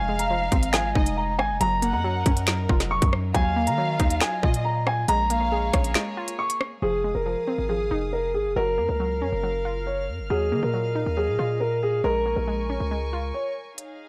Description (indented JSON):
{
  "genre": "hip hop, drill",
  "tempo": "138 BPM",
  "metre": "4/4",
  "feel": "half-time",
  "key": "F phrygian",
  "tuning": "A4 = 439 Hz",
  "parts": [
    { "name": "dark concert grand piano", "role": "melody", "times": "0.0-13.5 s", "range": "Ab4 to Db6", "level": "-28 LUFS", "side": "equal", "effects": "none" },
    { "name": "dark studio violin section", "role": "second line", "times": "0.0-5.9 s", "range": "Eb5 to Gb5", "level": "-33 LUFS", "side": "equal", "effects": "analog delay" },
    { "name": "warbly dusty pluck", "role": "accompaniment", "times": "0.0-13.8 s", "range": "F3 to F4", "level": "-34 LUFS", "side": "equal", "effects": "chorus" },
    { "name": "rich chamber string section", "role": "sustained chords", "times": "0.0-14.1 s", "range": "Gb3 to F6", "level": "-39 LUFS", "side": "equal", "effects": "none" },
    { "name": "hard-hitting 808-style bass", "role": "bass", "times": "0.0-13.3 s", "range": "F1 to Eb3", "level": "-30 LUFS", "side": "equal", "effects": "none" },
    { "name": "drill drum kit", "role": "drums", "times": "0.2-6.7, 13.8-13.9 s", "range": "finger snaps, hi-hat, kick drum, rim click, snare drum", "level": "-26 LUFS", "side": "equal", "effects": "none" }
  ],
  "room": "small room reverb",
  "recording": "dry, gritty hardware recording, transformer saturation",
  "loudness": "-24 LUFS",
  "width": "mono",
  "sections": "0.0-6.8 A section; 6.8-13.8 B section",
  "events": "break 6.0-6.8, 13.3-13.8, 13.8-14.1",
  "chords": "0.0 Fm7; 1.6 Gbmaj7; 3.3 Ebmadd9; 5.1 Bbm7; 6.8 Fm7; 8.6 Gbmaj7; 10.3 Ebmadd9; 12.0 Bbm7"
}